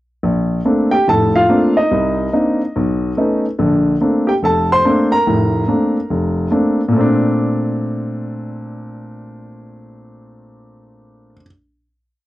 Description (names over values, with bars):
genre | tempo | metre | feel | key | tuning
solo jazz | 143 BPM | 4/4 | swing 64% on 8ths | Bb major | A4 = 440 Hz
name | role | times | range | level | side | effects
warm grand piano | solo | 0.2-11.4 s | F1 to C6 | -14 LUFS | equal | none
room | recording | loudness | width
light reverb | dry, close 1970s-style studio recording | -13 LUFS | side -16 dB against mid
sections
0.2-6.9 A section; 6.9-10.3 final chord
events
none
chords
0.2 Bbmaj9; 1.9 Cm9; 2.7 B9; 3.6 Bbmaj9